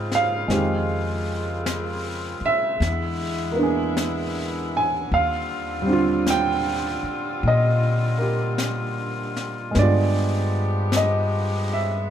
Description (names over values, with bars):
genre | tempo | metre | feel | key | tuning
jazz ballad | 52 BPM | 4/4 | swing 66% on 8ths | unclear | A4 = 442 Hz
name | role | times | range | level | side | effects
clear grand piano | accompaniment | 0.0-12.1 s | D3 to G#5 | -23 LUFS | right 2 dB | none
clear saxophone section | sustained chords | 0.0-12.1 s | C#3 to G4 | -29 LUFS | left 2 dB | none
upright bass | bass | 0.0-12.1 s | Eb2 to Bb2 | -25 LUFS | equal | none
jazz brush drum kit | drums | 0.1-12.1 s | brushed snare drum, hi-hat, snare drum | -32 LUFS | left 3 dB | none
room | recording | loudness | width
light reverb | dark, warm production | -20 LUFS | side -9 dB against mid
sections
0.0-12.1 A section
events
none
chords
0.5 Fm7; 2.8 E7#11; 5.1 Ebmaj13; 9.8 G7b9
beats
| 0.49 1.65 2.81 3.96 | 5.12 6.27 7.43 8.60 | 9.76 10.94